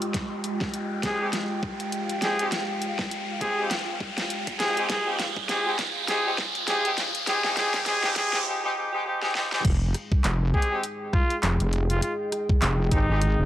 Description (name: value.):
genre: glitch hop.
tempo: 101 BPM.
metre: 4/4.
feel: swing 58% on 16ths.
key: F minor.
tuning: A4 = 438 Hz.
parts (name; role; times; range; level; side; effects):
dark analog pad; sustained chords; 0.0-13.5 s; Ab3 to G5; -34 LUFS; equal; chorus, sidechain pumping.
dubstep drum kit; drums; 0.0-13.4 s; crash cymbal, handclaps, hi-hat, rim click, snare drum; -30 LUFS; equal; overdrive.
riser; sound effects; 0.0-8.5 s; none; -31 LUFS; right 1 dB; none.
ethereal airy pad; texture; 0.0-13.5 s; Ab3 to G5; -39 LUFS; equal; ensemble chorus, built-in reverb, tremolo, sidechain pumping.
electronic kick drum; drums; 0.1-13.1 s; none; -25 LUFS; equal; overdrive.
clear trumpet; melody; 1.0-13.5 s; Eb4 to Ab4; -29 LUFS; equal; none.
clear horn section; stabs; 1.0-13.2 s; Ab3 to G4; -30 LUFS; equal; sidechain pumping, low-pass filter, analog delay.
wobble bass; bass; 9.6-13.5 s; F1 to Ab1; -23 LUFS; equal; chorus.
room: light reverb, digital ambience.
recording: dry, gritty hardware recording, cassette tape, high-pass filter.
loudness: -23 LUFS.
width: side -12 dB against mid.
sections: 0.0-9.6 A section; 9.6-13.5 B section.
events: build-up 0.0-9.6; riser 0.0-8.5; filter sweep 0.0-9.6; drum fill 0.1-8.5, 9.2-9.6; break 8.5-9.6; drop 9.6-13.5.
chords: 0.0 Fm9.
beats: | 0.14 0.74 1.33 1.93 | 2.52 3.11 3.71 4.30 | 4.90 5.49 6.08 6.68 | 7.27 7.87 8.46 9.05 | 9.65 10.24 10.84 11.43 | 12.03 12.62 13.21.